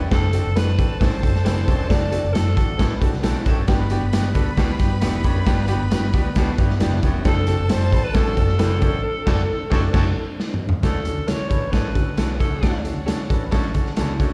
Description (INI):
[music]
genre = uptempo 1960s-style soul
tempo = 134 BPM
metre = 4/4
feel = straight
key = D major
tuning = A4 = 440 Hz
[part]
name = rich studio violin section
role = second line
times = 0.0-14.3 s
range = B3 to B5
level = -37 LUFS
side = equal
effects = slapback echo
[part]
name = clear concert grand piano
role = accompaniment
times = 0.0-14.3 s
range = B3 to B4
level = -30 LUFS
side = equal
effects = slapback echo
[part]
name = electric guitar through a small old amp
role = riff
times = 0.0-14.3 s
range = D4 to C#5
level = -40 LUFS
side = equal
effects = none
[part]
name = warm baritone saxophone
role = riff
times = 0.0-14.3 s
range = D2 to B2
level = -34 LUFS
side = equal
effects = slapback echo
[part]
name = vintage muted fingered electric bass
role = bass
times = 0.0-14.3 s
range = E1 to D3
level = -25 LUFS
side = equal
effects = none
[part]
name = growling alto saxophone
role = melody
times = 0.1-3.0, 7.3-12.8 s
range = A4 to D5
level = -30 LUFS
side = equal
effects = slapback echo
[part]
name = raw garage drum kit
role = drums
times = 0.1-14.3 s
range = crash cymbal, hi-hat, kick drum, snare drum, toms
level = -23 LUFS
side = equal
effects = none
[part]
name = mellow horn section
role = second line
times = 2.8-3.6, 9.3-10.1 s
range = D4 to A4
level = -39 LUFS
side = equal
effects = none
[part]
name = tonewheel organ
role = sustained chords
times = 3.7-10.8 s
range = D3 to G4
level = -38 LUFS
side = equal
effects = none
[sound]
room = studio ambience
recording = live gig heard through the venue's PA, club reverb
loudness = -20 LUFS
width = mono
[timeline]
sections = 0.0-10.8 A section; 10.8-14.3 B section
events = band accent 1.9-3.7, 9.0-10.8; drum fill 10.4-10.8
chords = 0.1 D7; 3.7 Gmaj7; 7.3 D7/F#; 10.8 Dmaj7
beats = | 0.11 0.56 1.01 1.45 | 1.90 2.35 2.79 3.24 | 3.69 4.13 4.58 5.02 | 5.47 5.92 6.37 6.81 | 7.26 7.71 8.15 8.60 | 9.05 9.49 9.94 10.39 | 10.84 11.29 11.73 12.18 | 12.63 13.08 13.53 13.98